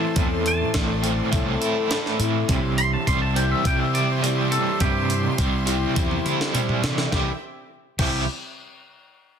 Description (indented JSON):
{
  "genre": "folk rock and heartland rock",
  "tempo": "103 BPM",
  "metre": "4/4",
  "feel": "straight",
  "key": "C major",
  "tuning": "A4 = 441 Hz",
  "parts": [
    { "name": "twangy electric guitar", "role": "second line", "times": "0.0-8.3 s", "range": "G4 to C6", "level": "-27 LUFS", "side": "equal", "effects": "none" },
    { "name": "picked old ladder-braced acoustic guitar", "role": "accompaniment", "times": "0.0-8.2 s", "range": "A2 to A4", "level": "-28 LUFS", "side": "left 6 dB", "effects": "none" },
    { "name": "clear studio string section", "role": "sustained chords", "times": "0.0-7.4 s", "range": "C4 to C6", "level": "-33 LUFS", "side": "right 1 dB", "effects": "none" },
    { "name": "crunchy overdriven guitar", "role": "riff", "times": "0.0-8.2 s", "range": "A2 to E4", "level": "-25 LUFS", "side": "right 3 dB", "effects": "tremolo" },
    { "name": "fingered electric bass", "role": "bass", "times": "0.2-8.3 s", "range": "A1 to C3", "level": "-26 LUFS", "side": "right 1 dB", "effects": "none" },
    { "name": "breakbeat sampler-style drum kit", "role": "drums", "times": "0.2-8.1 s", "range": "crash cymbal, hi-hat, kick drum, snare drum, toms", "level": "-25 LUFS", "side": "equal", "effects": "none" }
  ],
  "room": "light reverb, digital ambience",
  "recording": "dense, heavily limited modern master",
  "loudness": "-20 LUFS",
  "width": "side -7 dB against mid",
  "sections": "0.0-7.1 A section; 7.1-9.4 B section",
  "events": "clean electric guitar solo 0.0-7.1; drum fill 6.0-7.1",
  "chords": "0.0 Am; 2.5 C",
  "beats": "| 0.16 0.74 1.32 1.90 | 2.48 3.06 3.64 4.22 | 4.80 5.38 5.96 6.54 | 7.12 7.70"
}